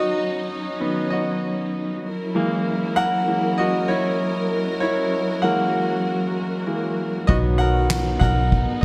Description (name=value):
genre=piano-driven pop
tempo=97 BPM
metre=4/4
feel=straight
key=B major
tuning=A4 = 435 Hz
part: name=clear concert grand piano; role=accompaniment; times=0.0-8.8 s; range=D#3 to F#5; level=-25 LUFS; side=equal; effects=none
part: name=warm studio string section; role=sustained chords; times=0.0-8.8 s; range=F#3 to A#4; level=-28 LUFS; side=equal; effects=none
part: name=dark French horn section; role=second line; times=7.3-8.8 s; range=F#3 to F#4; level=-31 LUFS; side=equal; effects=tape echo
part: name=vintage muted fingered electric bass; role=bass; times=7.3-8.8 s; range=B1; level=-23 LUFS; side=equal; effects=none
part: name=soft-mallet drum kit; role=drums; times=7.3-8.8 s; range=handclaps, kick drum, ride cymbal, snare drum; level=-24 LUFS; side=equal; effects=none
room=light reverb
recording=none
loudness=-22 LUFS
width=mono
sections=0.0-8.8 A section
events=grand piano solo 0.0-8.8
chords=0.0 B; 2.0 F#7; 7.3 B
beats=0.50 1.12 1.73 | 2.35 2.97 3.59 4.20 | 4.82 5.44 6.05 6.67 | 7.29 7.91 8.52